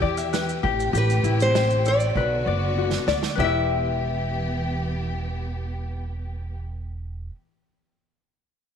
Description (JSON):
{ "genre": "acoustic pop", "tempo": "98 BPM", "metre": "4/4", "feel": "straight", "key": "E minor", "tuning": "A4 = 439 Hz", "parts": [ { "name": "nylon-string guitar", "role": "melody", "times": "0.0-7.3 s", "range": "G4 to E5", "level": "-26 LUFS", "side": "equal", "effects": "slapback echo" }, { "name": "tenor ukulele", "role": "accompaniment", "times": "0.0-7.4 s", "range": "E4 to E5", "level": "-26 LUFS", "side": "left 9 dB", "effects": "none" }, { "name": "warm symphonic string section", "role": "sustained chords", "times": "0.0-6.6 s", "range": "B2 to G4", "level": "-31 LUFS", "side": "equal", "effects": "none" }, { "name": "upright bass", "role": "bass", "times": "0.0-7.3 s", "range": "E1 to E2", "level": "-26 LUFS", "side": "right 2 dB", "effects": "none" }, { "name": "unplugged drum kit", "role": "drums", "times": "0.0-3.5 s", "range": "kick drum, shaker, snare drum", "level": "-30 LUFS", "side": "right 6 dB", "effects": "none" } ], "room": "moderate echo chamber reverb, RT60 2.0 s, studio ambience", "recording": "1960s-style stereo with parts hard left and right", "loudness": "-21 LUFS", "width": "side -8 dB against mid", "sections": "0.0-3.4 A section; 3.4-5.8 B section", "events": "drum fill 2.2-3.4", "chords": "0.0 Em; 0.6 Am7; 2.2 Bm; 3.4 Em" }